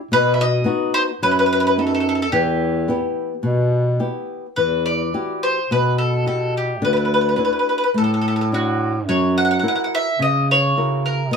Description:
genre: italian folk, Italian serenade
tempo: 107 BPM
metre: 4/4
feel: straight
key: E minor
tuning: A4 = 439 Hz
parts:
  - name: bowl-back mandolin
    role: melody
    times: 0.1-11.4 s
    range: F#4 to F#5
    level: -19 LUFS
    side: equal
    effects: none
  - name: flamenco guitar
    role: accompaniment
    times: 0.1-11.4 s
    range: B2 to A#4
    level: -22 LUFS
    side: left 3 dB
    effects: none
  - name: mellow bass clarinet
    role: bass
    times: 0.1-11.4 s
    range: D2 to C#3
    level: -22 LUFS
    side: right 2 dB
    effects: none
room: moderate studio reverb, RT60 0.7 s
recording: band playing live in one room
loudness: -17 LUFS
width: side -6 dB against mid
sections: 0.0-4.6 A section; 4.6-11.4 A section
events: none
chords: 0.1 B; 2.3 Em; 4.6 Emadd9; 6.8 Dadd9; 9.1 F#7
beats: | 0.11 0.66 1.22 1.77 | 2.33 2.88 3.44 4.00 | 4.57 5.14 5.70 6.26 | 6.82 7.38 7.94 8.50 | 9.06 9.62 10.18 10.74 | 11.30

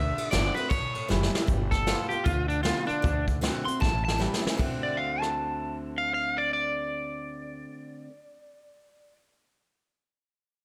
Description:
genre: rockabilly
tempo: 154 BPM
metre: 4/4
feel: swing 61% on 8ths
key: D mixolydian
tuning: A4 = 440 Hz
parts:
  - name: electric guitar at the edge of break-up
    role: melody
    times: 0.0-9.2 s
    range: D4 to C6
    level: -32 LUFS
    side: equal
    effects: analog delay
  - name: picked steel-string acoustic guitar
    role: accompaniment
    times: 0.0-8.1 s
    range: A2 to F#4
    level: -36 LUFS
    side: equal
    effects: none
  - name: upright bass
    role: bass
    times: 0.0-7.6 s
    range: F#1 to D2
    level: -34 LUFS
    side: equal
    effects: none
  - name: vintage brush drum kit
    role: drums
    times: 0.2-5.3 s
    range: crash cymbal, hi-hat, kick drum, ride cymbal, rim click, snare drum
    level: -32 LUFS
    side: equal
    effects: none
room: light reverb, small room ambience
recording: none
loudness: -28 LUFS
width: mono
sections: 0.0-1.5 A section; 1.5-4.6 B section; 4.6-7.7 C section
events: drum fill 1.1-1.5, 3.8-4.6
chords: 0.0 D7; 0.7 A7; 1.5 G7; 3.0 D7; 3.8 A7; 4.6 D7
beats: 0.32 0.70 1.09 | 1.48 1.87 2.26 2.65 | 3.04 3.42 3.81 4.20 | 4.59 4.98 5.37 5.75 | 6.14 6.53 6.92 7.31

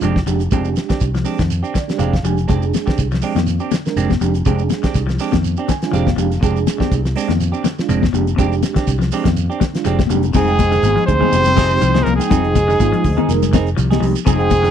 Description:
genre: afrobeat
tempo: 122 BPM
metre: 4/4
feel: swing 54% on 16ths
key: F dorian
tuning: A4 = 440 Hz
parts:
  - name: mellow reed electric piano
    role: accompaniment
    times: 0.0-14.7 s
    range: Ab3 to Ab5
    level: -23 LUFS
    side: right 12 dB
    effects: fast tremolo
  - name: semi-hollow electric guitar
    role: arpeggios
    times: 0.0-14.7 s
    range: C3 to F3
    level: -24 LUFS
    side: left 7 dB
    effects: spring reverb, slapback echo
  - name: semi-hollow electric guitar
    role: stabs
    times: 0.0-14.7 s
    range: Ab3 to Ab4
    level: -24 LUFS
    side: right 8 dB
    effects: phaser
  - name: fingered electric bass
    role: bass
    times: 0.0-14.7 s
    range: F1 to F2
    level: -19 LUFS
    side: equal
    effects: none
  - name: damped 70s drum kit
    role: drums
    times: 0.0-14.7 s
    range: crash cymbal, hi-hat, kick drum, snare drum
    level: -19 LUFS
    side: equal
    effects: none
  - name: shekere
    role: percussion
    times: 0.0-14.7 s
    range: none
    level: -29 LUFS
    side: right 8 dB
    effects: none
  - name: congas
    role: percussion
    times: 2.7-14.6 s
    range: none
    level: -22 LUFS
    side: left 16 dB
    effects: none
  - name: bright trombone section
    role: second line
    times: 10.3-14.7 s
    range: Ab2 to C3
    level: -26 LUFS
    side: left 9 dB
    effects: none
  - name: bright trumpet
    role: melody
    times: 10.4-14.7 s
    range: Ab4 to C5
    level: -18 LUFS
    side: right 1 dB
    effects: slapback echo
  - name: mellow trombone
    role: second line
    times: 10.4-14.7 s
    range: Ab3 to C4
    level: -25 LUFS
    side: right 4 dB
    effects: none
room: studio reverb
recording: dry, close 1970s-style studio recording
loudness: -14 LUFS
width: side -9 dB against mid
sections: 0.0-10.3 A section; 10.3-14.7 B section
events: reed electric piano fill 1.5-2.5, 5.4-6.4; drum fill 10.0-10.3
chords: 0.0 Fm69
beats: 0.03 | 0.52 1.01 1.51 2.00 | 2.49 2.98 3.48 3.97 | 4.46 4.95 5.44 5.93 | 6.42 6.92 7.41 7.90 | 8.39 8.88 9.37 9.86 | 10.35 10.83 11.32 11.81 | 12.30 12.79 13.28 13.77 | 14.26

